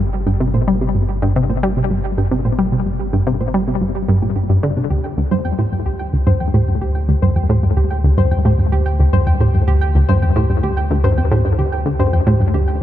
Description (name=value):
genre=ambient, sequencer-driven space music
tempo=110 BPM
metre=4/4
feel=straight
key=unclear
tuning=A4 = 438 Hz
part: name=analog pluck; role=riff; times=0.0-12.7 s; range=D2 to G3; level=-15 LUFS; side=equal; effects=chorus, ping-pong delay
part: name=warm sub bass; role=bass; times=0.0-12.8 s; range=G1 to D2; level=-20 LUFS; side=equal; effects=none
part: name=soft round pluck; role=arpeggios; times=0.1-12.7 s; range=D4 to G5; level=-25 LUFS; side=moving between left 5 dB and right 4 dB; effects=chorus, auto-pan, ping-pong delay
room=light reverb, digital ambience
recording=none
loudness=-14 LUFS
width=side -12 dB against mid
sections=0.0-12.8 A section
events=fade-in on synth arpeggio sound 0.0-12.8; filter sweep on synth arpeggio sound 0.0-12.8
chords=0.0 Gm; 4.9 Dm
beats=| 0.54 1.09 1.63 2.18 | 2.72 3.27 3.81 4.36 | 4.90 5.45 6.00 6.54 | 7.09 7.63 8.18 8.72 | 9.27 9.81 10.36 10.90 | 11.45 11.99 12.54